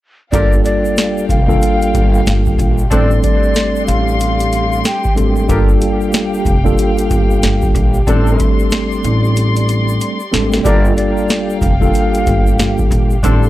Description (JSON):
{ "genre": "hip hop, boom-bap hip-hop", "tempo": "93 BPM", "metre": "4/4", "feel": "swing 62% on 16ths", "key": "G minor", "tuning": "A4 = 441 Hz", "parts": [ { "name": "breathy mellow jazz flute", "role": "melody", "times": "0.3-5.1, 10.6-12.7 s", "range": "D5 to G5", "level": "-20 LUFS", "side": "left 2 dB", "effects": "high-pass filter, low-pass filter, tape echo" }, { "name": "mellow tine electric piano", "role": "accompaniment", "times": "0.3-13.5 s", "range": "G3 to A4", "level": "-17 LUFS", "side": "right 1 dB", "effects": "medium stereo tremolo, high-pass filter, low-pass filter" }, { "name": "dark chamber string section", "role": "sustained chords", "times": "0.3-13.5 s", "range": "G4 to C6", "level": "-23 LUFS", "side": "left 2 dB", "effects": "high-pass filter, low-pass filter" }, { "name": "warm horn section", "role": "stabs", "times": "0.3-13.4 s", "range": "C4 to Bb4", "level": "-25 LUFS", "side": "left 2 dB", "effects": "high-pass filter, low-pass filter, tape echo" }, { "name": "upright bass", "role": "bass", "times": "0.3-13.5 s", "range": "F1 to Bb1", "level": "-17 LUFS", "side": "equal", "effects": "tube saturation" }, { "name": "booming analog drum machine", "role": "drums", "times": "0.3-13.4 s", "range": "hi-hat, kick drum, snare drum", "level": "-15 LUFS", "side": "equal", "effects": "none" }, { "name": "egg shaker", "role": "percussion", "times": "0.3-13.5 s", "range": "none", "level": "-36 LUFS", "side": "left 2 dB", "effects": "none" } ], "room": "studio ambience", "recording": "dry, gritty hardware recording, transformer saturation", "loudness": "-11 LUFS", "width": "side -15 dB against mid", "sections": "0.3-13.5 A section", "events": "drum fill 10.0-10.7", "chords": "0.3 Gm7; 2.9 D7sus4/A; 5.5 Gm7; 8.1 D7sus4/A; 10.7 Gm7", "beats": "| 0.33 0.97 1.62 2.26 | 2.91 3.55 4.20 4.84 | 5.49 6.13 6.78 7.42 | 8.07 8.71 9.36 10.01 | 10.65 11.30 11.94 12.59 | 13.23" }